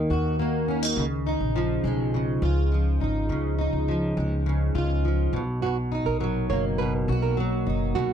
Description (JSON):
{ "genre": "acoustic pop", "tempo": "103 BPM", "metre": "4/4", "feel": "straight", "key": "unclear", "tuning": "A4 = 440 Hz", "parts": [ { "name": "fingerpicked plugged-in steel-string acoustic guitar", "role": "accompaniment", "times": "0.0-8.1 s", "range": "B2 to Gb4", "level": "-25 LUFS", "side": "equal", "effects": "double-tracked left and right" }, { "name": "upright bass", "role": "bass", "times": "0.0-8.1 s", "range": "F#1 to Eb2", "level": "-26 LUFS", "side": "equal", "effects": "none" }, { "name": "flamenco guitar", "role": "arpeggios", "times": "5.6-8.1 s", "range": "F#4 to Db5", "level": "-29 LUFS", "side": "right 11 dB", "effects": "none" } ], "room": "light reverb", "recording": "dry, close 1970s-style studio recording", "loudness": "-23 LUFS", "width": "side -8 dB against mid", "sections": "0.0-8.1 A section", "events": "none", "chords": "0.0 Ebm; 1.0 Dbadd9; 5.3 Bmaj7" }